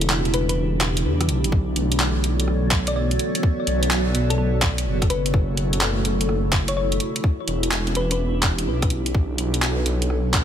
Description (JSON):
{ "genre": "future garage", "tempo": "126 BPM", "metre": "4/4", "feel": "swing 66% on 16ths", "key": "B minor", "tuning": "A4 = 440 Hz", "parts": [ { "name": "mellow tine electric piano", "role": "accompaniment", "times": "0.0-10.4 s", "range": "B2 to B4", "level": "-29 LUFS", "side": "right 4 dB", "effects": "sidechain pumping, ping-pong delay" }, { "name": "granular cloud pad", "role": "sustained chords", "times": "0.0-10.4 s", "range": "B3 to D5", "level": "-27 LUFS", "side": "equal", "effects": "built-in reverb, sidechain pumping" }, { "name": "dark detuned saw bass", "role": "bass", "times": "0.0-10.4 s", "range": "E1 to E2", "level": "-23 LUFS", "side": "equal", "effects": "tube saturation, sidechain pumping" }, { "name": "garage drum kit", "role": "drums", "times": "0.0-10.4 s", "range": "handclaps, hi-hat, rim click", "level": "-24 LUFS", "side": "equal", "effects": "overdrive, small room ambience" }, { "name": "thumb-piano-like synth pluck", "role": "melody", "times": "0.3-8.2 s", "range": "A4 to D5", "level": "-30 LUFS", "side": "left 3 dB", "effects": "chorus, ping-pong delay" }, { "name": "electronic kick drum", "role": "drums", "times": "1.5-10.4 s", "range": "none", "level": "-21 LUFS", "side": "equal", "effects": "overdrive, small room ambience" } ], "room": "light reverb", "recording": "none", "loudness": "-19 LUFS", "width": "side -9 dB against mid", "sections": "0.0-1.5 A section; 1.5-10.4 A section", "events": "break 0.0-1.5", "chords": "0.0 Em7; 1.5 Bm7; 5.3 F#m7; 7.2 Em7; 9.1 Bm7" }